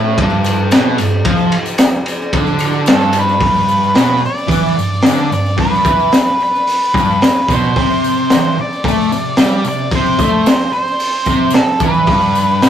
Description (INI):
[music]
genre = garage rock duo or trio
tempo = 111 BPM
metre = 4/4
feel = straight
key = G major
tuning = A4 = 440 Hz
[part]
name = fuzz guitar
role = riff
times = 0.0-12.7 s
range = G2 to A3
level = -15 LUFS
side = right 1 dB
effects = distortion
[part]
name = crunchy breakbeat drum kit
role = drums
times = 0.2-12.7 s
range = hi-hat, kick drum, ride cymbal, snare drum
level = -15 LUFS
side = left 1 dB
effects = none
[part]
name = tambourine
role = percussion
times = 0.3-12.7 s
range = none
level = -32 LUFS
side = left 4 dB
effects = none
[part]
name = octave-fuzz lead guitar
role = melody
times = 2.9-12.7 s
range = A4 to D5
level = -16 LUFS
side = equal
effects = distortion
[sound]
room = wet small room ambience, RT60 0.5 s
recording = rough rehearsal-room recording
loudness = -11 LUFS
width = side -9 dB against mid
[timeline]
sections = 0.0-3.4 A section; 3.4-12.7 B section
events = none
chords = 0.0 G5; 3.4 G; 7.8 C5; 12.1 G